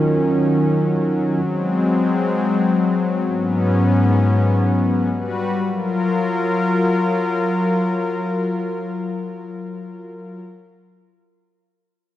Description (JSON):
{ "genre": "amapiano", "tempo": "free time", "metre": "none", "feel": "none", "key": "F# major", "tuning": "A4 = 435 Hz", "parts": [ { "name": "bell-like tine electric piano", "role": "accompaniment", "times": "0.0-1.4 s", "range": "F#3 to A#4", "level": "-20 LUFS", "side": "right 3 dB", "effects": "none" }, { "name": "warm analog pad", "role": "sustained chords", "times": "0.0-10.4 s", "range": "G#2 to B4", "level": "-18 LUFS", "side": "left 2 dB", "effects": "chorus" } ], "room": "light reverb", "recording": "none", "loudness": "-17 LUFS", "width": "side -13 dB against mid", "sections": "0.0-5.6 A section; 5.6-9.9 B section", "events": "none", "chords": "0.0 D#m7; 1.4 G#7; 3.3 C#7sus4/G#; 5.1 Gmaj7; 5.6 F#maj7", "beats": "free time" }